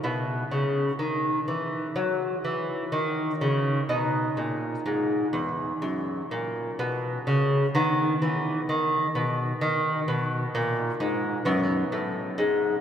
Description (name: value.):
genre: classical, baroque-style dance for lute.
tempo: 63 BPM.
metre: 4/4.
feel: rubato.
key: B major.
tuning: A4 = 440 Hz.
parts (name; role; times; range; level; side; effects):
lute; solo; 0.0-12.8 s; E2 to E4; -24 LUFS; equal; none.
room: wet cathedral reverb, RT60 5.3 s.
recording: in a vast, echoing space.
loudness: -24 LUFS.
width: side -9 dB against mid.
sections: 0.0-12.8 A section.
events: none.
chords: 0.1 N.C.; 3.9 B; 11.5 B5/F#.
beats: | 0.05 1.00 1.96 2.93 | 3.89 4.86 5.83 6.79 | 7.75 8.69 9.62 10.55 | 11.46 12.38.